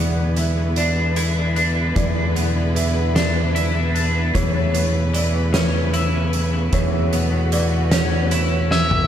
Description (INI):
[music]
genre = post-rock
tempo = 50 BPM (dotted quarters)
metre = 6/8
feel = straight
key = unclear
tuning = A4 = 440 Hz
[part]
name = clear chamber string section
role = sustained chords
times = 0.0-9.1 s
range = C#3 to B4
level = -27 LUFS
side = equal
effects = none
[part]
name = felt-muted upright piano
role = arpeggios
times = 0.0-8.7 s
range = C#5 to E5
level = -28 LUFS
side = right 1 dB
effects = analog delay
[part]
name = twelve-string electric guitar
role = arpeggios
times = 0.0-9.1 s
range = E2 to E4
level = -25 LUFS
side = left 1 dB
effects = analog chorus, analog delay
[part]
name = growling fingered electric bass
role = bass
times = 0.0-9.1 s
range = E2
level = -20 LUFS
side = equal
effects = overdrive
[part]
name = oversized low-tuned drum kit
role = drums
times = 0.4-9.1 s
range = hi-hat, kick drum, snare drum, toms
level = -24 LUFS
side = equal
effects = none
[part]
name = octave-fuzz lead guitar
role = melody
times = 8.7-9.1 s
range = E5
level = -19 LUFS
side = equal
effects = distortion
[sound]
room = moderate lush hall reverb, RT60 1.9 s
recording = dreamy mix soaked in reverb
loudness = -17 LUFS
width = side -10 dB against mid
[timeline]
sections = 0.0-9.1 A section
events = drum fill 8.7-9.1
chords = 0.0 E7; 4.3 Aadd9/E